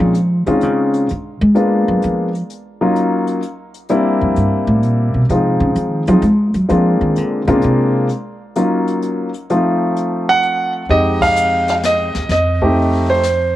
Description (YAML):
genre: jazz piano trio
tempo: 128 BPM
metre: 3/4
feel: swing 68% on 8ths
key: unclear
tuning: A4 = 441 Hz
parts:
  - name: warm concert grand piano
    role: melody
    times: 0.0-13.5 s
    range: Bb2 to Gb5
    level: -15 LUFS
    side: equal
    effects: none
  - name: upright bass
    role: bass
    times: 0.0-8.1, 10.9-13.6 s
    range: Eb2 to Ab3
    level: -16 LUFS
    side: equal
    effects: none
  - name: jazz brush drum kit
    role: drums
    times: 0.1-13.6 s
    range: brushed snare drum, hi-hat, kick drum, ride cymbal, snare drum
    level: -29 LUFS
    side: left 3 dB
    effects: none
room: light reverb, small room ambience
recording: 1960s-style stereo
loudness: -13 LUFS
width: side -14 dB against mid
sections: 0.0-10.9 A section; 10.9-13.6 B section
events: upright bass solo 0.0-10.9; band accent 11.1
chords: 0.0 Bbm11 (rootless); 1.1 Bb7b9; 2.5 Ebm7; 3.9 C7; 5.3 Fm7; 6.7 Bb7; 8.1 Ebm9; 9.5 F7; 10.9 Fm9; 12.3 F7